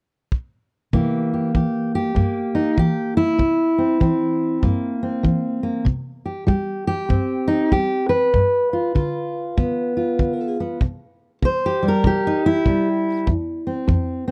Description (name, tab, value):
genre	acoustic country blues, solo or duo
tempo	97 BPM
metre	4/4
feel	swing 64% on 8ths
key	C mixolydian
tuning	A4 = 437 Hz
part	kick drum	drums	0.3-14.1 s	none	-23 LUFS	equal	none
part	fingerpicked steel-string acoustic guitar	melody	0.9-14.3 s	F2 to C5	-21 LUFS	equal	none
room	small room reverb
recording	dry, close 1970s-style studio recording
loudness	-21 LUFS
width	mono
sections	0.9-10.8 A section; 10.8-14.3 B section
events	none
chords	0.0 N.C.; 0.9 C7; 8.3 G7; 10.8 C7; 13.3 F5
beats	0.31 | 0.93 1.55 2.16 2.78 | 3.40 4.02 4.63 5.25 | 5.87 6.48 7.10 7.72 | 8.34 8.95 9.57 10.19 | 10.80 11.42 12.03 12.65 | 13.27 13.88